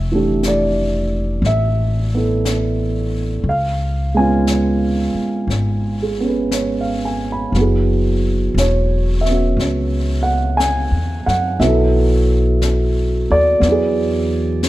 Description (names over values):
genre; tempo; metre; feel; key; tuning
jazz ballad; 59 BPM; 4/4; swing 68% on 8ths; unclear; A4 = 436 Hz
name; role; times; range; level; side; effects
dark upright piano; accompaniment; 0.0-14.7 s; E3 to B5; -17 LUFS; right 2 dB; none
upright bass; bass; 0.0-14.7 s; E1 to F#2; -18 LUFS; left 1 dB; none
jazz brush drum kit; drums; 0.4-14.7 s; brushed snare drum, hi-hat, snare drum; -29 LUFS; left 3 dB; none
room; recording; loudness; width
light reverb; dark, warm production; -15 LUFS; side -16 dB against mid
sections
0.0-14.7 A section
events
none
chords
0.0 Fmaj9#11; 3.5 C#7; 7.5 F#9sus4; 11.6 B5; 13.6 E9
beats
0.43 1.43 2.44 | 3.46 4.47 5.49 6.51 | 7.53 8.55 9.57 10.59 | 11.60 12.61 13.62 14.63